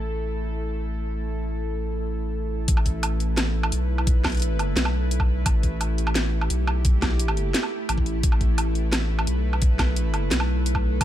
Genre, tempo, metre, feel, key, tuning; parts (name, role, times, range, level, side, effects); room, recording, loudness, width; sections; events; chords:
half-time drum and bass; 173 BPM; 4/4; half-time; A4 = 440 Hz
bowed-like drone; sustained chords; 0.0-11.0 s; A3 to B4; -30 LUFS; right 1 dB; built-in reverb, vintage 12-bit sampler grit, sidechain pumping
saturated sub bass; bass; 0.0-11.0 s; A1 to B1; -24 LUFS; equal
drum and bass drum kit; drums; 2.7-11.0 s; hi-hat, snare drum, woodblock; -26 LUFS; right 1 dB
electronic kick drum; drums; 2.7-11.0 s; -22 LUFS; equal
digital ambience; low-pass filter; -21 LUFS; side -12 dB against mid
0.0-2.7 A section; 2.7-11.0 B section
filter sweep 0.0-2.7; drop 2.7-11.0
0.0 A5